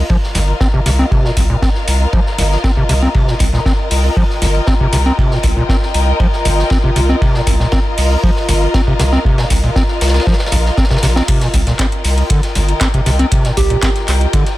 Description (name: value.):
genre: acid house.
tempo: 118 BPM.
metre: 4/4.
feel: straight.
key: C minor.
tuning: A4 = 440 Hz.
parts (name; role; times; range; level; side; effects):
saturated sub bass; bass; 0.0-14.3 s; G1 to C2; -14 LUFS; equal; sidechain pumping.
dark studio string section; texture; 0.0-14.6 s; F4 to G5; -20 LUFS; left 2 dB; sidechain pumping.
overdriven acid bass; riff; 0.1-14.4 s; C2 to C4; -18 LUFS; equal; distortion, tube saturation, vintage 12-bit sampler grit, tape echo.
electronic kick drum; drums; 0.1-14.4 s; none; -15 LUFS; equal; studio ambience.
vintage drum kit; drums; 0.1-14.6 s; hi-hat, ride cymbal, snare drum; -26 LUFS; equal; sidechain pumping on cymbals, high-pass filter on cymbals, studio ambience, sidechain pumping on hats, high-pass filter on hats, high-pass filter on snare, high-pass filter on room.
electro analog drum machine; drums; 0.4-14.6 s; crash cymbal, handclaps, hi-hat; -22 LUFS; equal; studio ambience.
soft struck synth lead; melody; 13.6-14.1 s; G4; -20 LUFS; right 6 dB; chorus, tape echo.
room: light reverb.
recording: none.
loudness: -11 LUFS.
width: side -16 dB against mid.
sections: 0.0-14.6 A section.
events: none.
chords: 0.0 Cm7.